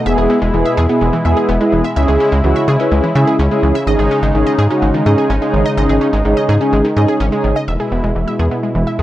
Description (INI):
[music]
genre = synth-pop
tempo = 126 BPM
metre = 4/4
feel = straight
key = unclear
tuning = A4 = 439 Hz
[part]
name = brassy analog pad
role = sustained chords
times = 0.0-9.0 s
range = B2 to E4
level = -18 LUFS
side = equal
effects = chorus, tremolo
[part]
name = mellow synth brass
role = accompaniment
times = 0.1-7.6 s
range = B3 to B4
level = -16 LUFS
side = equal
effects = chorus
[part]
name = wide unison pluck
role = arpeggios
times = 0.1-9.0 s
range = D#3 to E5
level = -21 LUFS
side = equal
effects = tape echo
[part]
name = rubbery square bass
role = bass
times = 0.1-9.0 s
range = E1 to C#3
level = -15 LUFS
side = equal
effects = none
[sound]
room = light reverb, digital ambience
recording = dry, gritty hardware recording, transformer saturation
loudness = -12 LUFS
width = side -14 dB against mid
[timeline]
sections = 0.0-7.7 A section; 7.7-9.0 B section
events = none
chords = 0.1 E; 2.0 C#m; 3.9 G#sus4; 7.7 E